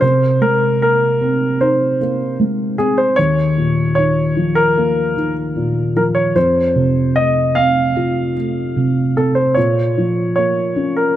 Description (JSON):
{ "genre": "pop", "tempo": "75 BPM", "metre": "4/4", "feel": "straight", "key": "unclear", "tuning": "A4 = 441 Hz", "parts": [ { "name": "warm grand piano", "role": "melody", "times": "0.0-11.2 s", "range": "Ab4 to F5", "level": "-16 LUFS", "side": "equal", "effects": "none" }, { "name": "felt-muted upright piano", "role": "accompaniment", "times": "0.0-11.2 s", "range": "Eb2 to F4", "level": "-16 LUFS", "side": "equal", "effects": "none" } ], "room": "light reverb", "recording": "none", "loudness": "-13 LUFS", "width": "side -12 dB against mid", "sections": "0.0-11.2 A section", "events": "none", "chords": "0.0 Abadd9/C; 3.2 Ebsus2; 6.4 F; 9.6 Bbm", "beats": "| 0.03 0.82 1.61 2.39 | 3.18 3.98 4.77 5.56 | 6.36 7.16 7.96 8.76 | 9.57 10.37" }